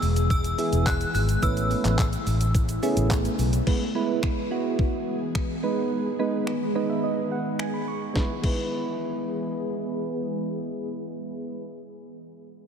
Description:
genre	dance-pop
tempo	107 BPM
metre	4/4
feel	straight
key	E major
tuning	A4 = 439 Hz
part	synth chime	melody	0.0-3.1 s	E6 to F#6	-31 LUFS	equal	ensemble chorus, ping-pong delay
part	ethereal airy pad	sustained chords	0.0-11.2 s	C#3 to G#4	-31 LUFS	left 1 dB	ensemble chorus, built-in reverb, sidechain pumping, low-pass filter
part	vintage muted fingered electric bass	bass	0.0-3.6 s	E1 to B1	-24 LUFS	equal	sidechain pumping
part	detuned 8-bit digital drum machine	drums	0.0-8.6 s	crash cymbal, finger snaps, handclaps, hi-hat, kick drum, shaker, snare drum	-28 LUFS	equal	none
part	egg shaker	percussion	0.0-3.7 s	none	-45 LUFS	right 10 dB	none
part	soft electric-piano-like synth keys	accompaniment	0.6-11.7 s	G#3 to C#6	-28 LUFS	right 3 dB	chorus, sidechain pumping, low-pass filter
room	moderate huge ambient reverb, RT60 4.3 s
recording	dreamy mix soaked in reverb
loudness	-23 LUFS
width	side -7 dB against mid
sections	0.0-3.7 A section; 3.7-8.2 B section; 8.2-10.4 C section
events	synth keys fill 6.5-8.2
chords	0.0 E; 1.4 Aadd9; 3.7 E; 5.6 G#m; 8.2 E

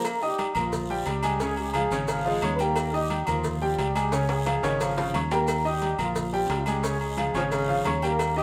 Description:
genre	latin, salsa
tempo	177 BPM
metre	4/4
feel	straight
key	Eb major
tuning	A4 = 440 Hz
part	mellow trombone section	melody	0.0-8.4 s	F3 to Cb5	-33 LUFS	equal	none
part	dark saxophone section	second line	0.0-2.5, 4.6-5.2, 7.3-7.9 s	Db3 to Ab3	-33 LUFS	equal	none
part	agogo bells and timbales	percussion	0.0-8.4 s	none	-34 LUFS	equal	none
part	congas	percussion	0.0-8.4 s	none	-43 LUFS	equal	none
part	cowbell	percussion	0.0-8.4 s	none	-38 LUFS	equal	none
part	guiro	percussion	0.0-8.4 s	none	-45 LUFS	equal	none
part	maracas	percussion	0.0-8.4 s	none	-47 LUFS	equal	none
part	clear grand piano	accompaniment	0.2-8.4 s	Db3 to Eb6	-31 LUFS	equal	none
part	fingered electric bass	bass	0.6-8.4 s	Ab1 to Eb2	-33 LUFS	equal	none
room	moderate stone room reverb, RT60 1.1 s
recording	band playing live in one room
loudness	-26 LUFS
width	mono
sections	0.0-8.4 A section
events	drum fill 4.1-5.5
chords	0.0 Eb; 1.4 Db; 2.8 Eb; 4.1 Db; 5.5 Eb; 6.8 Db

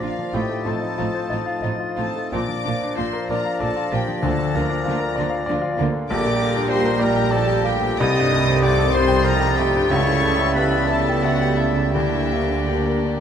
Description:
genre	classical, romantic movement for piano and orchestra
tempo	81-100 BPM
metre	3/4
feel	rubato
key	Bb major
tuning	A4 = 440 Hz
part	clear concert grand piano	melody	0.0-13.2 s	Bb1 to G5	-24 LUFS	left 1 dB	none
part	warm studio violin section	melody	0.0-13.2 s	D5 to Eb6	-29 LUFS	left 4 dB	none
part	bright clarinet	second line	0.0-13.2 s	D4 to Eb5	-30 LUFS	left 2 dB	none
part	silver concert flute	second line	0.0-13.1 s	A6 to Bb6	-30 LUFS	left 3 dB	none
part	warm oboe	second line	0.0-13.2 s	D5 to G5	-33 LUFS	right 1 dB	none
part	warm studio violin section	second line	0.0-13.2 s	C4 to C5	-30 LUFS	left 5 dB	none
part	mellow bassoon	accompaniment	0.0-13.1 s	F3 to G3	-29 LUFS	right 2 dB	none
part	rich studio viola section	accompaniment	0.0-13.2 s	D3 to D4	-29 LUFS	right 2 dB	none
part	mellow French horn section	sustained chords	0.0-13.2 s	F3 to G4	-29 LUFS	left 5 dB	none
part	warm studio cello section	bass	0.0-13.2 s	A2 to D3	-27 LUFS	right 3 dB	none
part	warm studio double bass section	bass	0.0-13.2 s	A1 to D2	-28 LUFS	right 4 dB	none
room	moderate concert hall reverb, RT60 1.8 s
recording	close, detailed microphones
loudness	-18 LUFS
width	side -8 dB against mid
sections	0.0-13.2 A section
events	none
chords	0.3 F7/A; 2.3 Bb; 4.2 Bb/D; 6.1 Gm/Bb; 8.0 Am7b5/C; 9.9 A7/C#; 11.9 Gm/D

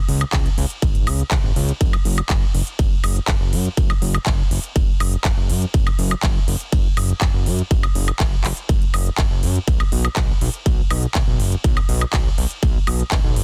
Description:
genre	progressive house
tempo	122 BPM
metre	4/4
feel	straight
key	unclear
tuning	A4 = 439 Hz
part	fat analog bass	bass	0.1-13.4 s	F#1 to F#2	-24 LUFS	equal	sidechain pumping
part	big-room dance drum kit	drums	0.1-13.4 s	handclaps, hi-hat, ride cymbal, woodblock	-28 LUFS	equal	none
part	electronic kick drum	drums	0.3-13.2 s	none	-21 LUFS	equal	none
room	digital ambience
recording	dense, heavily limited modern master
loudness	-19 LUFS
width	mono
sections	0.0-13.4 A section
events	none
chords	none

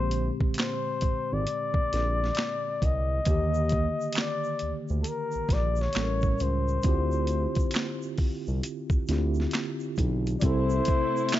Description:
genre	R&B, neo-soul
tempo	67 BPM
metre	4/4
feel	swing 63% on 16ths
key	unclear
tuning	A4 = 440 Hz
part	breathy flugelhorn	melody	0.0-11.4 s	A4 to E5	-30 LUFS	left 4 dB	slapback echo
part	tine electric piano	accompaniment	0.0-11.4 s	A2 to Bb4	-32 LUFS	right 1 dB	medium stereo tremolo
part	smooth synth bass	bass	0.0-10.8 s	Ab1 to Eb2	-28 LUFS	equal	none
part	boom bap sampler-style drum kit	drums	0.1-11.4 s	handclaps, hi-hat, kick drum, snare drum	-28 LUFS	equal	none
part	egg shaker and finger snaps	percussion	3.3-11.4 s	none	-42 LUFS	right 7 dB	none
part	warm studio string section	sustained chords	10.4-11.4 s	C3 to E4	-35 LUFS	right 1 dB	none
room	small room ambience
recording	nothing above 7.7 kHz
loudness	-25 LUFS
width	side -13 dB against mid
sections	0.0-10.4 A section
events	none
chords	0.0 Bb13; 3.3 Ebmaj7; 5.9 A7b9; 6.8 Dm11; 10.4 C6

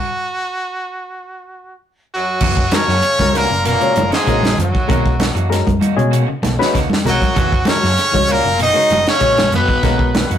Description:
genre	afrobeat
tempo	97 BPM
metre	4/4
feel	straight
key	F# mixolydian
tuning	A4 = 440 Hz
part	brilliant trumpet	melody	0.0-10.4 s	F#4 to D#5	-19 LUFS	equal	none
part	brilliant trombone section	second line	2.1-10.4 s	F#2 to D#3	-26 LUFS	left 4 dB	none
part	breathy tenor saxophone	second line	2.2-10.4 s	F#3 to D#4	-21 LUFS	right 1 dB	none
part	electric guitar at the edge of break-up	arpeggios	2.4-10.4 s	B2 to F#3	-26 LUFS	left 2 dB	spring reverb
part	electric guitar at the edge of break-up	stabs	2.4-10.4 s	D#3 to F#4	-27 LUFS	right 4 dB	none
part	fingered electric bass	bass	2.4-10.4 s	F#1 to B2	-21 LUFS	equal	none
part	tight funk drum kit	drums	2.4-10.4 s	crash cymbal, hi-hat, kick drum, snare drum	-19 LUFS	right 1 dB	none
part	congas	percussion	2.4-10.3 s	none	-21 LUFS	equal	none
part	barky reed electric piano	accompaniment	2.7-10.1 s	G#3 to C#5	-20 LUFS	left 3 dB	none
room	wet studio reverb, RT60 0.5 s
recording	rough rehearsal-room recording, warm saturation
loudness	-13 LUFS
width	side -9 dB against mid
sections	0.0-2.4 A section; 2.4-10.4 B section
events	stop 0.0-2.4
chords	0.0 N.C.; 2.4 F#7; 4.9 Bmaj7; 7.4 F#7; 9.8 Bmaj7

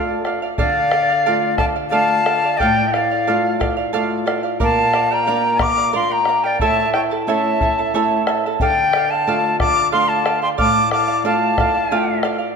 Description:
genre	andean folk, Andean ensemble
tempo	90 BPM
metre	3/4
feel	straight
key	D minor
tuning	A4 = 442 Hz
part	bright reedy quena	melody	0.0-12.2 s	D5 to D6	-18 LUFS	left 2 dB	none
part	breathy bright large quena	second line	0.0-12.2 s	A4 to Bb5	-25 LUFS	left 2 dB	none
part	charango	accompaniment	0.0-12.6 s	E4 to A5	-22 LUFS	right 7 dB	none
part	flamenco guitar	accompaniment	0.0-12.5 s	A2 to F4	-24 LUFS	left 2 dB	none
part	bombo	percussion	0.2-12.4 s	none	-25 LUFS	left 2 dB	none
room	wet scoring stage reverb, RT60 1.7 s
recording	none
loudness	-15 LUFS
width	side -5 dB against mid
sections	0.6-12.6 A section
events	none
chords	0.0 Dm; 4.6 Bb; 6.6 A; 8.6 Dm

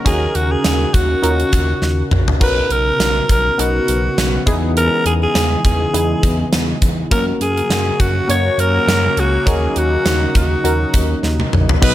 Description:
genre	1980s-style pop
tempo	102 BPM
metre	4/4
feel	swing 55% on 16ths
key	unclear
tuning	A4 = 441 Hz
part	warm analog keys	accompaniment	0.0-11.9 s	B2 to D#5	-22 LUFS	left 1 dB	chorus
part	sweeping resonant pad	sustained chords	0.0-11.9 s	C#3 to A#4	-24 LUFS	right 2 dB	chorus
part	raspy alto saxophone	melody	0.1-11.9 s	F#4 to C#5	-19 LUFS	equal	digital delay
part	smooth gliding synth bass	bass	0.1-11.9 s	A#1 to F#2	-19 LUFS	equal	none
part	gated 80s drum kit	drums	0.1-11.9 s	crash cymbal, hi-hat, kick drum, snare drum, toms	-17 LUFS	equal	none
room	light reverb, studio ambience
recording	none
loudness	-13 LUFS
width	side -14 dB against mid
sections	0.0-11.8 A section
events	drum fill 1.8-2.4, 11.2-11.8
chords	0.1 D#m7; 2.4 Bmaj7; 4.5 Emaj7; 7.1 F#; 9.5 D#m7

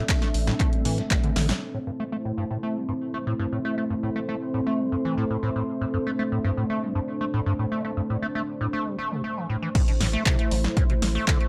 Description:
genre	acid house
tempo	118 BPM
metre	4/4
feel	straight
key	A minor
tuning	A4 = 439 Hz
part	dark analog pad	sustained chords	0.0-11.5 s	A3 to E5	-34 LUFS	equal	chorus, sidechain pumping
part	liquid acid bass	riff	0.0-11.5 s	A1 to A3	-31 LUFS	equal	phaser, overdrive, subtle chorus, sidechain pumping, tape echo
part	deep dark ambient pad	texture	0.0-9.8 s	C4 to C6	-34 LUFS	equal	chorus, built-in reverb, sidechain pumping
part	dusty soul sampler-style drum kit	drums	0.1-1.6, 9.8-11.4 s	hi-hat, snare drum	-43 LUFS	equal	none
part	electronic kick drum	drums	0.1-1.2, 9.8-11.4 s	none	-25 LUFS	equal	none
part	punchy analog drum machine	drums	0.1-1.6, 9.8-11.5 s	crash cymbal, handclaps, hi-hat, snare drum	-31 LUFS	equal	none
part	saturated sub bass	bass	0.3-1.5, 10.0-11.2 s	A1 to A2	-28 LUFS	equal	tube saturation, sidechain pumping
room	moderate studio reverb, RT60 0.6 s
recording	dry, gritty hardware recording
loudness	-26 LUFS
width	mono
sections	0.0-1.6 A section; 1.6-9.8 B section; 9.8-11.5 C section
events	filter sweep on acid bass 0.0-1.6, 1.6-9.8; drum fill 1.4; band accent 1.5; drop 9.8-11.5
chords	0.0 Am

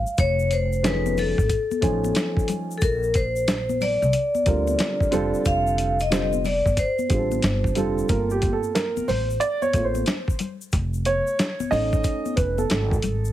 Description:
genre	hip hop, jazz-hop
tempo	91 BPM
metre	4/4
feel	swing 65% on 16ths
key	unclear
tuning	A4 = 437 Hz
part	vibraphone with hard mallets	melody	0.0-7.7 s	A4 to F5	-24 LUFS	left 2 dB	plate reverb
part	upright bass	bass	0.0-13.3 s	F1 to D2	-26 LUFS	equal	none
part	tube shaker and congas	percussion	0.1-13.3 s	none	-33 LUFS	left 7 dB	none
part	dusty soul sampler-style drum kit	drums	0.2-13.2 s	hi-hat, kick drum, snare drum	-24 LUFS	equal	none
part	dark upright piano	accompaniment	0.8-13.3 s	D3 to G#5	-25 LUFS	right 3 dB	plate reverb
room	moderate studio reverb, RT60 0.7 s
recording	heavily compressed radio sound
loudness	-20 LUFS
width	side -13 dB against mid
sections	0.0-8.1 A section; 8.1-13.3 B section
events	upright piano solo 8.1-13.3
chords	0.2 F7alt; 2.8 Bb; 5.1 F; 7.4 Gsus2; 8.1 Gm11; 10.7 F7alt

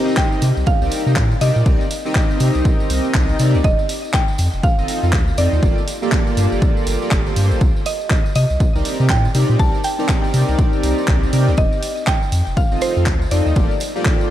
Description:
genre	deep house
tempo	121 BPM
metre	4/4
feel	swing 60% on 16ths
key	C dorian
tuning	A4 = 439 Hz
part	mallet-like synth pluck	melody	0.0-14.3 s	C5 to A5	-25 LUFS	right 1 dB	chorus, ping-pong delay
part	chorused polysynth	stabs	0.0-14.3 s	Bb3 to F5	-22 LUFS	equal	sidechain pumping, ping-pong delay
part	tambourine	percussion	0.1-14.3 s	none	-36 LUFS	right 3 dB	none
part	electronic kick drum	drums	0.2-14.2 s	none	-17 LUFS	equal	none
part	house drum kit	drums	0.2-14.2 s	handclaps, hi-hat, ride cymbal	-27 LUFS	equal	none
part	round analog bass	bass	0.4-13.7 s	F1 to C3	-17 LUFS	equal	tube saturation, sidechain pumping
room	light reverb, digital ambience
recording	none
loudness	-14 LUFS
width	side -12 dB against mid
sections	0.0-14.3 A section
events	none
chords	0.0 Cm9; 3.6 F7; 5.6 Gm9; 7.6 Cm9; 11.6 F7; 13.6 Gm9

